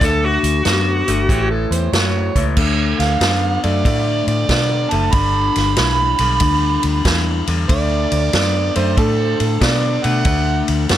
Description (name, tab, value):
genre	electric blues shuffle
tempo	94 BPM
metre	4/4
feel	swing 66% on 8ths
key	D major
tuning	A4 = 444 Hz
part	dark smooth lead guitar	melody	0.0-1.5 s	F#4 to A4	-18 LUFS	left 1 dB	overdrive
part	electric guitar through a small old amp	riff	0.0-11.0 s	G2 to B3	-21 LUFS	left 6 dB	none
part	vintage muted fingered electric bass	bass	0.0-11.0 s	F#1 to B2	-19 LUFS	equal	none
part	vintage drum kit	drums	0.0-11.0 s	crash cymbal, hi-hat, kick drum, ride cymbal, snare drum	-20 LUFS	equal	none
part	overdriven harmonica	second line	1.3-10.7 s	G4 to B5	-21 LUFS	right 6 dB	digital delay
room	little or no reverb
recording	none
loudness	-14 LUFS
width	side -12 dB against mid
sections	0.0-2.6 A section; 2.6-11.0 B section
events	harmonica solo 2.6-11.0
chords	0.0 D6; 1.3 A6; 2.6 D6; 5.1 G6; 7.7 D6